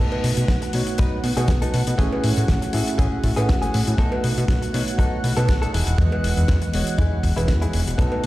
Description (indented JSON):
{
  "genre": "nu-disco, nu disco",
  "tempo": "120 BPM",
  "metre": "4/4",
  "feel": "swing 54% on 16ths",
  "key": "B mixolydian",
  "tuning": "A4 = 439 Hz",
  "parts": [
    { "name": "tine electric piano", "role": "accompaniment", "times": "0.0-8.3 s", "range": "E3 to E5", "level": "-27 LUFS", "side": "right 1 dB", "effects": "medium stereo tremolo, tape echo" },
    { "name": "lush unison pad", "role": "sustained chords", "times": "0.0-8.3 s", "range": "F#4 to F#5", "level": "-32 LUFS", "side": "equal", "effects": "chorus, sidechain pumping" },
    { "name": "direct-recorded clean electric guitar", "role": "riff", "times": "0.0-8.3 s", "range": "A3 to B4", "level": "-30 LUFS", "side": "left 2 dB", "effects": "wide subtle chorus, tape echo" },
    { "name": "fat analog bass", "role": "bass", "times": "0.0-8.3 s", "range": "E1 to B2", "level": "-22 LUFS", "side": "equal", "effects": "none" },
    { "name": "cowbell", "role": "percussion", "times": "0.1-8.2 s", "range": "none", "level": "-32 LUFS", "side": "right 5 dB", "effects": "none" },
    { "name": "damped 70s drum kit", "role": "drums", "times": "0.2-8.3 s", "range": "hi-hat, snare drum", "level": "-30 LUFS", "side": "left 2 dB", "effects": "none" },
    { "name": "kick drum", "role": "drums", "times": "0.5-8.1 s", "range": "none", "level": "-21 LUFS", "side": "equal", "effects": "none" }
  ],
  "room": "light reverb, small room ambience",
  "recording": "played on a big sound system in a bare room, stone room reverb",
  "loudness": "-18 LUFS",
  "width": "side -17 dB against mid",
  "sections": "0.0-8.3 A section",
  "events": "none",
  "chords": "0.0 B7; 2.0 Amaj7; 4.0 B7; 5.7 Emaj7",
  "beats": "0.49 0.99 1.49 | 1.99 2.49 2.99 3.49 | 3.99 4.49 4.99 5.49 | 5.99 6.49 6.99 7.49 | 7.99"
}